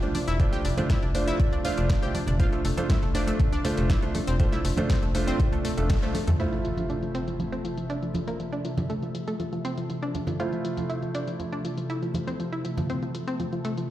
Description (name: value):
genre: progressive house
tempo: 120 BPM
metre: 4/4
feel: straight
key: F major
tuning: A4 = 439 Hz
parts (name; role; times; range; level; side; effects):
- warm analog pad; sustained chords; 0.0-13.9 s; C3 to E5; -33 LUFS; left 1 dB; lush chorus, sidechain pumping
- analog pluck; arpeggios; 0.0-13.9 s; F3 to G4; -31 LUFS; left 1 dB; chorus, cassette tape, sidechain pumping, tape echo
- warm grand piano; stabs; 0.0-13.9 s; A3 to C5; -32 LUFS; right 3 dB; sidechain pumping, low-pass filter, tape echo
- tight sequencer bass; bass; 0.0-6.3 s; F1 to F2; -28 LUFS; equal; sidechain pumping
- deep house drum kit; drums; 0.0-13.9 s; hi-hat, snare drum; -39 LUFS; left 1 dB; overdrive, sidechain pumping on hats, low-pass filter on hats, low-pass filter on snare, low-pass filter on room
- congas; percussion; 0.1-13.5 s; none; -34 LUFS; right 2 dB; sidechain pumping on perc
- electronic kick drum; drums; 0.4-6.0 s; none; -24 LUFS; equal; overdrive
- impact; sound effects; 6.4-8.4 s; none; -35 LUFS; equal; none
room: light reverb, digital ambience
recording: played on a big sound system in a bare room, large studio reverb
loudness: -24 LUFS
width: side -14 dB against mid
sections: 0.0-6.4 A section; 6.4-13.9 B section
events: band accent 5.9; impact 6.4-8.4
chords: 0.0 Dm7/F; 6.4 Fmaj7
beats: | 0.40 0.90 1.40 1.90 | 2.40 2.90 3.40 3.90 | 4.40 4.90 5.40 5.90 | 6.40 6.90 7.40 7.90 | 8.40 8.90 9.40 9.90 | 10.40 10.90 11.40 11.90 | 12.40 12.90 13.40 13.90